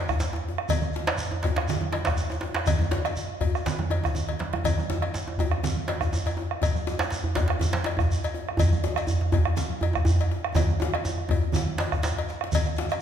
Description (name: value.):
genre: west african traditional, West African drum ensemble.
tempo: 122 BPM.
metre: 4/4.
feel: swing 54% on 16ths.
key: none.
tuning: none.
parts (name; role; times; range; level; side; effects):
bombo; percussion; 0.1-13.0 s; none; -28 LUFS; equal; none.
congas; percussion; 0.1-13.0 s; none; -34 LUFS; right 7 dB; none.
djembe; percussion; 0.1-12.9 s; none; -32 LUFS; left 5 dB; none.
djembe; percussion; 0.1-12.2 s; none; -27 LUFS; right 2 dB; none.
shekere; percussion; 0.1-13.0 s; none; -36 LUFS; right 2 dB; none.
cowbell; percussion; 0.7-13.0 s; none; -34 LUFS; left 3 dB; none.
room: wet scoring stage reverb, RT60 1.6 s.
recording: recorded in a church or concert hall.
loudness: -24 LUFS.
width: side -9 dB against mid.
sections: 0.0-12.5 A section.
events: drum fill 4.0-4.7, 10.6-12.5.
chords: none.